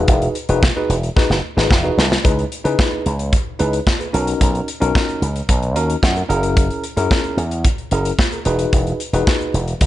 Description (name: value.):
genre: early-eighties boogie funk.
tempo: 111 BPM.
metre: 4/4.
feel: straight.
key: C# dorian.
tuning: A4 = 440 Hz.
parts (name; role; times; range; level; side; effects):
tine electric piano; accompaniment; 0.0-9.6 s; C#4 to B4; -21 LUFS; moving between left 4 dB and right 4 dB; auto-pan.
slap bass with an envelope filter; bass; 0.0-9.9 s; E1 to C#3; -19 LUFS; equal; none.
modern studio drum kit; drums; 0.1-9.9 s; hi-hat, kick drum, snare drum; -18 LUFS; equal; none.
room: small room ambience.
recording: nothing above 10.3 kHz.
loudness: -15 LUFS.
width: side -14 dB against mid.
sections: 0.0-2.2 A section; 2.2-9.9 B section.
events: drum fill 1.2-2.2.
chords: 0.0 Emaj9; 2.2 C#m9; 4.1 Bmaj7; 6.3 F#9; 8.5 Emaj9.